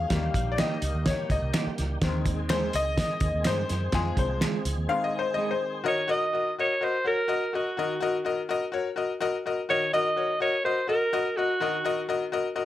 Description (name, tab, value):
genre	uptempo 1960s-style soul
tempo	125 BPM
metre	4/4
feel	straight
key	unclear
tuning	A4 = 439 Hz
part	bright upright piano	accompaniment	0.0-12.7 s	Eb3 to F5	-28 LUFS	left 4 dB	none
part	tonewheel organ	sustained chords	0.0-5.8 s	Eb3 to Ab4	-38 LUFS	right 1 dB	slow rotary speaker, overdrive, chorus vibrato
part	vintage muted fingered electric bass	bass	0.0-4.9 s	Bb1 to G2	-30 LUFS	right 1 dB	none
part	cloth-damped thuddy drum kit	drums	0.1-4.8 s	hi-hat, kick drum, snare drum	-28 LUFS	right 1 dB	none
part	electric guitar through a small old amp	stabs	0.6-5.5 s	G3 to Ab4	-34 LUFS	right 7 dB	lush chorus
part	finger snaps	percussion	0.6-4.5 s	none	-36 LUFS	left 3 dB	none
part	bright alto saxophone	melody	5.9-12.1 s	Gb4 to Eb5	-26 LUFS	right 1 dB	none
room	light reverb, small room ambience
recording	none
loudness	-24 LUFS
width	side -13 dB against mid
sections	0.0-5.9 A section; 5.9-12.7 B section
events	upright piano solo 0.0-5.9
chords	0.1 Eb; 2.0 Ab; 3.9 Fm; 4.9 Ab; 5.9 Ebm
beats	| 0.10 0.58 1.06 1.54 | 2.02 2.50 2.98 3.46 | 3.94 4.42 4.89 5.37 | 5.85 6.33 6.81 7.29 | 7.77 8.24 8.72 9.20 | 9.68 10.16 10.63 11.11 | 11.59 12.07 12.55